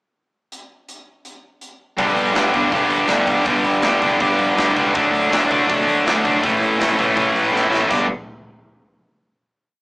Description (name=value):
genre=punk rock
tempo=162 BPM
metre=4/4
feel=straight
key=G lydian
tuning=A4 = 440 Hz
part: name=big rock drum kit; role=drums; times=0.5-8.0 s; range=crash cymbal, hi-hat, kick drum, snare drum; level=-26 LUFS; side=equal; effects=none
part: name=cranked stack guitar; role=riff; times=2.0-8.1 s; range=G2 to G4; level=-20 LUFS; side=equal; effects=overdrive
part: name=tight distorted guitar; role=riff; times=2.0-8.0 s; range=G2 to D4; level=-17 LUFS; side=equal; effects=distortion
part: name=fuzz picked electric bass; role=bass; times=2.0-8.1 s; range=G1 to D2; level=-27 LUFS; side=equal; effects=overdrive
room=light reverb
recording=rough rehearsal-room recording, tube saturation, small speaker sound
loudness=-15 LUFS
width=side -36 dB against mid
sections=0.5-2.0 pickup bar; 2.0-7.9 verse; 7.9-9.4 final chord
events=drum fill 7.5-7.9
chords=0.5 N.C.; 2.0 G; 4.9 D; 6.4 A; 7.9 G5